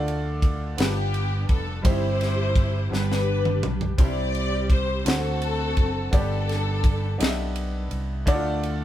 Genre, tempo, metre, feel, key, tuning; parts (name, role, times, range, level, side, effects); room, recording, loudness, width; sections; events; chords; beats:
slow gospel; 56 BPM (dotted quarters); 6/8; straight; A4 = 443 Hz
clear upright piano; accompaniment; 0.0-8.8 s; G2 to E5; -29 LUFS; right 1 dB
fingered electric bass; bass; 0.0-8.8 s; F1 to D2; -26 LUFS; equal
tight funk drum kit; drums; 0.1-8.8 s; kick drum, ride cymbal, snare drum, toms; -23 LUFS; equal
warm studio string section; melody; 0.8-7.5 s; B3 to D5; -28 LUFS; left 3 dB
moderate studio reverb, RT60 0.6 s; band playing live in one room; -21 LUFS; side -12 dB against mid
0.0-8.8 A section
drum fill 2.9-4.0
0.0 Dm; 0.8 G7; 1.9 C/G; 2.9 G; 4.0 C; 5.1 D7; 6.1 G; 8.3 Dm
0.79 | 1.86 2.92 | 3.99 5.06 | 6.13 7.20 | 8.27